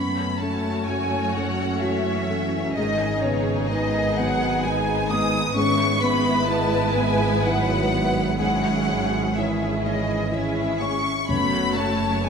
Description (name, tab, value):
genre	cinematic, emotional film score for orchestra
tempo	63 BPM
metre	3/4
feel	rubato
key	F# dorian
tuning	A4 = 443 Hz
part	warm symphonic violin section	melody	0.0-12.3 s	C#5 to D#6	-28 LUFS	left 4 dB	none
part	small flute group	second line	0.0-12.3 s	C#5 to D#6	-29 LUFS	right 1 dB	none
part	warm symphonic violin section	second line	0.0-12.3 s	D#4 to C#5	-29 LUFS	left 1 dB	none
part	felt-muted upright piano	accompaniment	0.0-12.3 s	F#2 to C#5	-28 LUFS	left 1 dB	none
part	warm symphonic viola section	accompaniment	0.0-12.3 s	G#3 to F#4	-30 LUFS	right 2 dB	none
part	mellow French horn section	sustained chords	0.0-12.3 s	C#3 to D#4	-29 LUFS	left 3 dB	none
part	clear studio double bass section	bass	0.0-12.3 s	F#1 to G#1	-30 LUFS	right 4 dB	none
part	warm symphonic cello section	bass	0.0-12.3 s	F#2 to G#2	-30 LUFS	right 4 dB	none
part	timpani	percussion	11.3-12.3 s	F#2	-32 LUFS	left 1 dB	none
room	moderate scoring stage reverb, RT60 2.1 s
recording	none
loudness	-20 LUFS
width	side -6 dB against mid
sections	0.0-12.3 A section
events	none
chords	0.0 F#m; 2.8 G#m; 5.6 E/G#; 8.4 C#m/G#; 11.3 F#m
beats	0.89 1.83 | 2.77 3.71 4.65 | 5.56 6.49 7.44 | 8.40 9.37 10.34 | 11.31 12.26